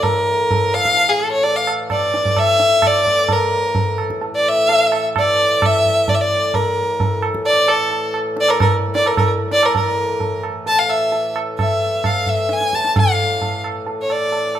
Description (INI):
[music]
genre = indian classical, Hindustani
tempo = 130 BPM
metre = 7/4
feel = straight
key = unclear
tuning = A4 = 441 Hz
[part]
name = clear violin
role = melody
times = 0.0-14.6 s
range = G#4 to A5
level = -16 LUFS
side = equal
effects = none
[part]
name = pedal harmonium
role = drone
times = 0.0-14.6 s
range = A2 to E3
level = -26 LUFS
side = left 2 dB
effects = none
[part]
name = tabla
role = percussion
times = 0.0-14.6 s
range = none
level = -21 LUFS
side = right 2 dB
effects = none
[sound]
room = moderate recital hall reverb, RT60 1.5 s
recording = minimal, uncompressed stereo recording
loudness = -14 LUFS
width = side -10 dB against mid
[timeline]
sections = 0.0-9.8 A section; 9.8-14.6 B section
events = speeding up 0.0-14.6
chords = none